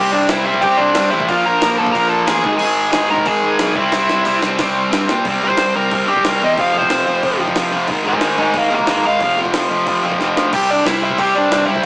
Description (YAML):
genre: punk rock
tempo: 182 BPM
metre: 4/4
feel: straight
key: unclear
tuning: A4 = 441 Hz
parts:
  - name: dark smooth lead guitar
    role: melody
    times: 0.0-11.9 s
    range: D4 to Bb5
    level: -16 LUFS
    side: equal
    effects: overdrive
  - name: distorted electric guitar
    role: riff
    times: 0.0-11.8 s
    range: F2 to C4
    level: -18 LUFS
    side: equal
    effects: distortion
  - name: sludgy distorted guitar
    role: riff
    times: 0.0-10.5 s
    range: F2 to C4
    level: -23 LUFS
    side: equal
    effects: overdrive
  - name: tight distorted guitar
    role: riff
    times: 0.0-11.8 s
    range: F2 to C4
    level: -23 LUFS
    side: left 1 dB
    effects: distortion
  - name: picked electric bass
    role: bass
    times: 0.0-11.9 s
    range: F1 to Bb2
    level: -27 LUFS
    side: equal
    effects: none
  - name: jungle sampler-style drum kit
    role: drums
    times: 0.3-11.9 s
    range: crash cymbal, hi-hat, kick drum, snare drum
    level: -23 LUFS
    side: equal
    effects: none
room: moderate studio ambience, RT60 0.5 s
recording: rough rehearsal-room recording, tube saturation, small speaker sound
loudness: -13 LUFS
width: side -26 dB against mid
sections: 0.0-5.3 A section; 5.3-10.5 B section; 10.5-11.9 A section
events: drum fill 3.9-5.3, 10.2-10.5; lead electric guitar solo 5.3-10.5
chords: 0.0 C; 1.3 Bb5; 2.4 Ab5; 3.8 C; 5.3 C5; 6.6 F5; 7.9 Ab; 9.2 F5; 10.5 C